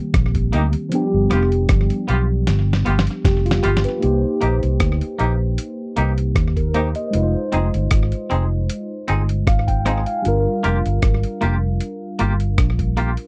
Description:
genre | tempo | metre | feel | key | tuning
lovers rock reggae | 77 BPM | 4/4 | swing 54% on 16ths | C minor | A4 = 440 Hz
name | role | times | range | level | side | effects
mellow tine electric piano | accompaniment | 0.0-13.3 s | Eb3 to Ab5 | -25 LUFS | equal | phaser, slapback echo
vintage muted fingered electric bass | bass | 0.1-13.2 s | F1 to Eb2 | -21 LUFS | equal | none
lo-fi sampler-style drum kit | drums | 0.1-13.3 s | hi-hat, kick drum, rim click, snare drum | -23 LUFS | equal | slapback echo
twangy electric guitar | stabs | 0.5-13.1 s | Bb3 to Ab4 | -25 LUFS | equal | tremolo
room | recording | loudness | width
little or no reverb | dry, close 1970s-style studio recording | -19 LUFS | mono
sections
0.0-4.0 A section; 4.0-13.3 B section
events
drum fill 2.5-4.0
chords
0.0 Cm7; 0.9 G7; 4.0 Cm7; 7.1 Fm7; 10.2 Gm7

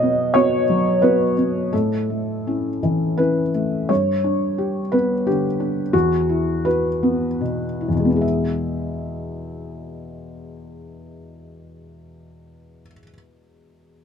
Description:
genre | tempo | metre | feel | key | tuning
neoclassical minimalist piano | 72-94 BPM | 3/4 | rubato | E major | A4 = 437 Hz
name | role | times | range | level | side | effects
felt-muted upright piano | solo | 0.0-14.0 s | E2 to E5 | -18 LUFS | left 1 dB | none
room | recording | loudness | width
little or no reverb | close, detailed microphones | -18 LUFS | side -7 dB against mid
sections
0.0-3.9 A section; 3.9-8.2 B section; 8.2-12.9 C section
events
slowing down 2.8-8.2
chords
0.0 B; 1.7 A; 3.9 G; 5.9 Esus2; 8.2 E

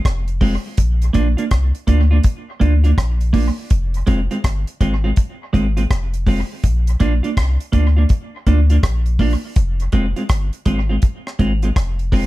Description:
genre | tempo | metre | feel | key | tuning
roots reggae | 82 BPM | 4/4 | swing 64% on 16ths | F dorian | A4 = 441 Hz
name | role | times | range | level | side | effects
warm sub bass | bass | 0.1-12.3 s | F1 to D2 | -16 LUFS | equal | none
deep reggae drum kit | drums | 0.1-12.3 s | hi-hat, kick drum, rim click | -17 LUFS | equal | none
clean electric guitar | accompaniment | 0.4-12.3 s | Ab3 to F4 | -21 LUFS | right 3 dB | dub echo
room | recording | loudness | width
little or no reverb | none | -15 LUFS | side -17 dB against mid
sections
0.0-12.3 A section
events
none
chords
0.0 Fm; 0.8 Bb; 3.7 Fm; 6.6 Bb; 9.6 Fm

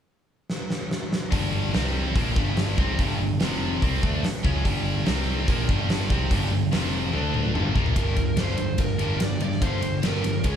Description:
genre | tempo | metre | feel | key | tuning
hard rock | 145 BPM | 4/4 | straight | G minor | A4 = 440 Hz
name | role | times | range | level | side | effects
huge arena drum kit | drums | 0.5-10.5 s | hi-hat, kick drum, ride cymbal, snare drum, toms | -25 LUFS | equal | none
scooped high-gain guitar | riff | 1.3-10.6 s | F2 to D4 | -30 LUFS | right 6 dB | distortion
tight distorted guitar | riff | 1.3-10.6 s | F2 to D4 | -30 LUFS | left 6 dB | distortion
picked electric bass | bass | 1.3-10.6 s | F1 to G2 | -27 LUFS | equal | none
biting lead guitar | melody | 8.0-10.6 s | G#4 to D5 | -31 LUFS | right 3 dB | overdrive
room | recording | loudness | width
moderate large studio reverb, RT60 0.9 s | band playing live in one room | -22 LUFS | side -8 dB against mid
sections
0.0-1.3 A section; 1.3-8.0 B section; 8.0-10.6 C section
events
drum fill 0.5-1.3, 7.1-8.0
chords
0.0 N.C.; 1.3 G5; 1.7 C5; 2.2 Gm; 3.4 F5; 3.8 G5; 5.1 C5; 5.5 Gm; 6.7 F5; 7.1 D5; 7.5 Gm

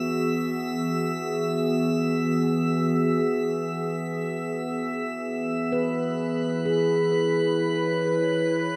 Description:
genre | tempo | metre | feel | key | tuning
ambient | free time | none | none | E major | A4 = 442 Hz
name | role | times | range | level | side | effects
warbly tape-like pad | sustained chords | 0.0-8.8 s | E3 to C#5 | -27 LUFS | equal | chorus, built-in reverb
drifting glass-harmonics texture | texture | 0.0-8.8 s | B4 to E6 | -34 LUFS | equal | chorus, built-in reverb
handpan | arpeggios | 5.7-8.8 s | G#4 to B4 | -29 LUFS | equal | analog delay
room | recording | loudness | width
wet lush hall reverb, RT60 2.7 s | dreamy mix soaked in reverb | -25 LUFS | mono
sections
0.0-8.8 A section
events
none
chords
0.0 Eadd9; 5.7 Aadd9/E (rootless)

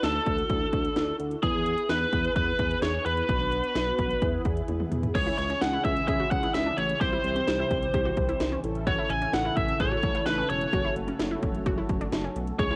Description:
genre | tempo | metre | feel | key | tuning
synth-pop | 129 BPM | 4/4 | straight | unclear | A4 = 441 Hz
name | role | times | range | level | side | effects
biting lead guitar | melody | 0.0-12.8 s | G#4 to G#5 | -30 LUFS | equal | overdrive
mellow synth brass | accompaniment | 0.0-12.8 s | B3 to A4 | -38 LUFS | equal | chorus, cassette tape
smooth synth bass | bass | 0.0-12.8 s | E1 to E2 | -34 LUFS | equal | none
house drum kit | drums | 0.0-12.7 s | crash cymbal, hi-hat, kick drum, snare drum, toms | -32 LUFS | equal | overdrive, cassette tape
phased analog pad | sustained chords | 5.6-12.8 s | C3 to A4 | -39 LUFS | equal | phaser, chorus, cassette tape
analog pluck | arpeggios | 5.1-12.8 s | C4 to G#4 | -38 LUFS | equal | chorus, cassette tape, tape echo
room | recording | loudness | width
light reverb | home recording on cassette | -27 LUFS | mono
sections
0.0-5.1 A section; 5.1-12.8 B section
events
drum fill 4.7-5.1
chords
0.0 Dadd9; 1.4 E; 3.3 Bm; 4.2 E; 5.1 C#m; 7.0 C; 8.6 A; 10.7 F#m

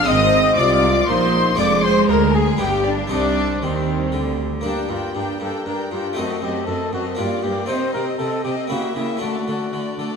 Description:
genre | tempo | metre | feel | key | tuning
classical, baroque-style concerto movement with solo episodes | 118 BPM | 3/4 | straight | C minor, G minor from 4.7 s | A4 = 440 Hz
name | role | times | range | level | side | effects
dark trumpet | melody | 0.0-10.2 s | C4 to Eb5 | -23 LUFS | left 2 dB | none
rich chamber violin section | melody | 0.0-10.2 s | C5 to Eb6 | -27 LUFS | left 4 dB | none
clear chamber violin section | second line | 0.0-10.2 s | C4 to G5 | -26 LUFS | left 2 dB | none
harpsichord | accompaniment | 0.0-10.2 s | D2 to F4 | -26 LUFS | left 1 dB | none
rich studio viola section | accompaniment | 0.0-10.2 s | G3 to F4 | -24 LUFS | right 1 dB | none
clear chamber cello section | bass | 0.0-10.1 s | D2 to Eb3 | -28 LUFS | right 4 dB | none
clear chamber double bass section | bass | 0.0-4.6 s | F1 to Eb2 | -24 LUFS | right 3 dB | none
room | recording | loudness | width
moderate scoring stage reverb, RT60 1.9 s | none | -17 LUFS | side -6 dB against mid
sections
0.0-4.7 A section; 4.7-10.2 B section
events
none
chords
0.1 Ab; 1.6 Ddim/F; 2.6 G; 3.1 Cm; 4.7 Gm; 6.2 F#dim7; 7.2 Gm; 7.7 Cm; 8.7 C#dim7; 9.2 D

